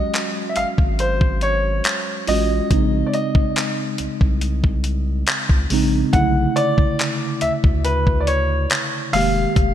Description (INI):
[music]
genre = contemporary R&B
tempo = 70 BPM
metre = 4/4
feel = straight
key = Eb dorian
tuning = A4 = 438 Hz
[part]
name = warm baby grand piano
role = melody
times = 0.0-9.7 s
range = B4 to F#5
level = -22 LUFS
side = equal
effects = ping-pong delay
[part]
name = mellow tine electric piano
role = accompaniment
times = 0.0-9.7 s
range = Db3 to G4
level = -23 LUFS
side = right 1 dB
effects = medium stereo tremolo
[part]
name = dusty soul sampler-style drum kit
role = drums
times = 0.1-9.7 s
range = handclaps, hi-hat, kick drum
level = -20 LUFS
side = equal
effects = gated reverb
[part]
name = saturated sub bass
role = bass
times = 0.6-9.7 s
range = F1 to D2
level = -22 LUFS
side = equal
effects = none
[sound]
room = light reverb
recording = bright 1980s-style digital production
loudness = -17 LUFS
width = side -10 dB against mid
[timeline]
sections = 0.0-9.7 A section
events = none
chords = 0.0 Ebm11; 2.7 Bbm11; 6.1 Bm11 (rootless); 9.1 Fm11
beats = 0.14 0.99 1.85 | 2.71 3.56 4.42 5.28 | 6.13 6.99 7.85 8.71 | 9.56